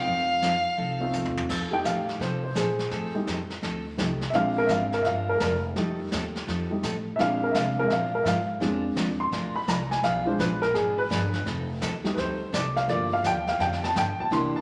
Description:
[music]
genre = country, western swing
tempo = 169 BPM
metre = 4/4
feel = swing 65% on 8ths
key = F mixolydian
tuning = A4 = 440 Hz
[part]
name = clear fiddle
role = melody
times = 0.0-1.1 s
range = F5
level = -28 LUFS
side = equal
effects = none
[part]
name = dark upright piano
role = accompaniment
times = 0.0-14.6 s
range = E3 to C6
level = -28 LUFS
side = equal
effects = none
[part]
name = picked steel-string acoustic guitar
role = accompaniment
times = 0.1-14.5 s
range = B2 to B4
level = -35 LUFS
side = equal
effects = none
[part]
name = upright bass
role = bass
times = 0.1-14.6 s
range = F1 to C3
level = -37 LUFS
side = equal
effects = none
[part]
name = vintage brush drum kit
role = drums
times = 0.1-14.6 s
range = brushed snare drum, crash cymbal, hi-hat, kick drum, snare drum, toms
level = -37 LUFS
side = equal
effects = none
[sound]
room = wet large studio reverb, RT60 1.4 s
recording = none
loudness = -27 LUFS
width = mono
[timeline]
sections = 0.0-1.5 A section; 1.5-14.6 B section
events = drum fill 1.1-1.5; upright piano solo 1.5-14.6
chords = 0.0 F7; 4.3 Bb7; 5.8 F7; 7.2 Bb7; 10.0 Bdim7; 11.5 F7; 12.9 Gm7

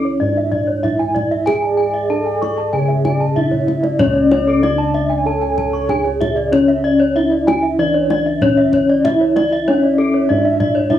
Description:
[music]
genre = Balinese gamelan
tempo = 95 BPM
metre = 4/4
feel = straight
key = C# pelog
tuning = A4 = 442 Hz
[part]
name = gamelan-type bronze metallophone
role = melody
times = 0.0-11.0 s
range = C#4 to A4-20c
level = -18 LUFS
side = equal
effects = cassette tape, plate reverb
[part]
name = gamelan-type bronze metallophone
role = arpeggios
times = 0.0-11.0 s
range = A4-20c to C#6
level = -20 LUFS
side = left 2 dB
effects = cassette tape, plate reverb
[part]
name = gamelan-type bronze metallophone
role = arpeggios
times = 0.0-10.6 s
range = C#5 to A5-20c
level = -25 LUFS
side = right 4 dB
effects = cassette tape, plate reverb, analog delay
[part]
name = gamelan-type bossed gongs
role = bass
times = 0.0-11.0 s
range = C#2 to G#4-30c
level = -20 LUFS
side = left 1 dB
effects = none
[part]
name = kendang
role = percussion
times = 0.4-11.0 s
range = none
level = -23 LUFS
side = left 1 dB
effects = none
[part]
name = breathy mellow bansuri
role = second line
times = 1.6-11.0 s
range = C#5 to G#5-29c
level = -24 LUFS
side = right 2 dB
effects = cassette tape, plate reverb
[sound]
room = moderate studio ambience, RT60 0.5 s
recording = home recording on cassette, small room ambience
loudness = -13 LUFS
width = side -11 dB against mid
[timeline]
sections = 0.0-11.0 A section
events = drum fill 3.2-4.0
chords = none

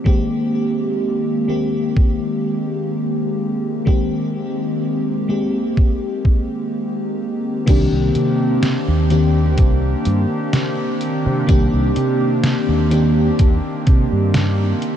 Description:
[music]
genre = vaporwave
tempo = 63 BPM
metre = 4/4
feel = straight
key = C minor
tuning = A4 = 437 Hz
[part]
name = FM electric piano with soft pad layer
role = accompaniment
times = 0.0-15.0 s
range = Eb3 to G4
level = -20 LUFS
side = left 1 dB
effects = lush chorus, ping-pong delay
[part]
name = warbly tape-like pad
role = sustained chords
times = 0.0-15.0 s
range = Eb3 to G4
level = -23 LUFS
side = equal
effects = chorus, built-in reverb
[part]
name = electronic kick drum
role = drums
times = 0.1-14.1 s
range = none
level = -14 LUFS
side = equal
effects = none
[part]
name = fretless electric bass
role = bass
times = 7.7-14.7 s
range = C2 to C3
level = -18 LUFS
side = equal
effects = analog chorus
[part]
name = detuned 8-bit digital drum machine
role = drums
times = 7.7-15.0 s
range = crash cymbal, hi-hat, snare drum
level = -24 LUFS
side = equal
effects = none
[sound]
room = moderate huge ambient reverb, RT60 6.2 s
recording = dreamy mix soaked in reverb, cassette tape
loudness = -16 LUFS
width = side -10 dB against mid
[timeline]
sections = 0.0-7.7 A section; 7.7-15.0 B section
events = filter sweep on ambient pad 0.0-7.7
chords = 0.1 Abmaj9; 7.7 Cm9

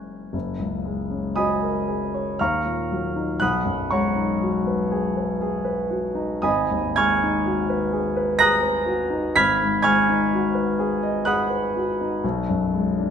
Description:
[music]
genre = classical, impressionist solo piano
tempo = 53-64 BPM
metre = 3/4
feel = rubato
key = F# major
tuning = A4 = 438 Hz
[part]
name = warm concert grand piano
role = solo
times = 0.0-13.1 s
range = F#1 to B6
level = -20 LUFS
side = equal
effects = none
[sound]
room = moderate recital hall reverb, RT60 1.5 s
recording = none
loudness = -20 LUFS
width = side -7 dB against mid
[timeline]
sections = 0.3-13.1 A section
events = none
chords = 0.3 F#add9; 2.4 D#madd9; 3.4 B69; 6.4 G#m9; 9.3 C#9sus4/G#; 12.2 Bm6

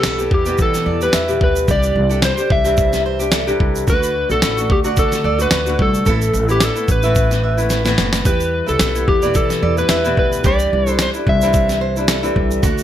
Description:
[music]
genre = acoustic pop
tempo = 110 BPM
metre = 4/4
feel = swing 55% on 16ths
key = unclear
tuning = A4 = 441 Hz
[part]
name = electric slide guitar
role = melody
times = 0.0-11.8 s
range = G4 to E5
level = -19 LUFS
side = equal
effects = tape echo
[part]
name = nylon-string guitar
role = accompaniment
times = 0.0-12.8 s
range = E2 to G4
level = -22 LUFS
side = left 1 dB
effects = none
[part]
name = fingerpicked plugged-in steel-string acoustic guitar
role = arpeggios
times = 0.0-12.8 s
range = F#4 to F#5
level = -26 LUFS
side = right 5 dB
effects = tape echo
[part]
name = upright bass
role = bass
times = 0.0-12.8 s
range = F#1 to E3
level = -20 LUFS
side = equal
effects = none
[part]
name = dusty soul sampler-style drum kit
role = drums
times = 0.0-12.8 s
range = kick drum, shaker, snare drum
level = -18 LUFS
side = equal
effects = none
[sound]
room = moderate studio reverb, RT60 0.8 s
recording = none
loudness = -14 LUFS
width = side -11 dB against mid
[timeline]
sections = 0.0-12.8 A section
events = drum fill 7.7-8.3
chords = 0.0 Em; 1.7 Cadd9; 3.9 D; 6.1 Asus2; 8.3 Em; 10.4 Cadd9

